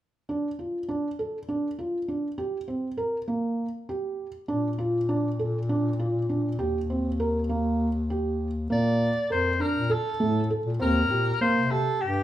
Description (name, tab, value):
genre	contemporary instrumental, chamber music in an uneven meter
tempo	200 BPM (eighths)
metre	7/8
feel	straight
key	Bb major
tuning	A4 = 438 Hz
part	felt-muted upright piano	arpeggios	0.3-12.1 s	A3 to Bb4	-27 LUFS	right 2 dB	none
part	mellow bass clarinet	bass	4.5-12.2 s	Eb2 to C3	-28 LUFS	left 1 dB	none
part	warm soprano saxophone	melody	8.7-12.2 s	G4 to D5	-26 LUFS	left 1 dB	none
room	moderate recital hall reverb, RT60 1.7 s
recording	minimal, uncompressed stereo recording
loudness	-24 LUFS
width	side -12 dB against mid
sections	0.3-8.7 A section; 8.7-12.2 B section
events	none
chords	0.3 Dm; 2.4 Gmadd11; 4.5 Bb; 6.6 Eb; 8.7 Bbmaj7; 10.8 Eb6